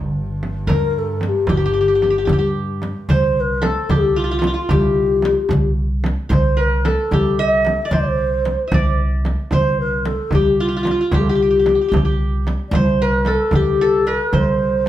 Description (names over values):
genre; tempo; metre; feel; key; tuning
Arabic maqam ensemble; 75 BPM (dotted quarters); 6/8; straight; G minor, C maqam rast from 3.1 s; A4 = 440 Hz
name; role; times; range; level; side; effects
qanun; second line; 0.0-14.9 s; F4 to E5-50c; -24 LUFS; right 2 dB; none
upright bass; bass; 0.0-14.9 s; G1 to G2; -21 LUFS; equal; none
clear double bass; drone; 0.0-3.2 s; G2; -28 LUFS; right 1 dB; none
frame drum; percussion; 0.4-14.9 s; none; -23 LUFS; right 1 dB; none
mellow hollow low ney; melody; 0.7-14.9 s; F4 to E5-49c; -18 LUFS; left 2 dB; plate reverb
darbuka; percussion; 0.7-14.5 s; none; -23 LUFS; equal; none
room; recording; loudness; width
wet studio reverb, RT60 0.6 s; heard from further back in the room; -15 LUFS; side -12 dB against mid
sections
0.0-3.1 A section; 3.1-14.9 B section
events
none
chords
none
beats
0.69 | 1.50 2.30 | 3.10 3.90 | 4.71 5.51 | 6.31 7.11 | 7.92 8.72 | 9.52 10.32 | 11.12 11.93 | 12.73 13.53 | 14.33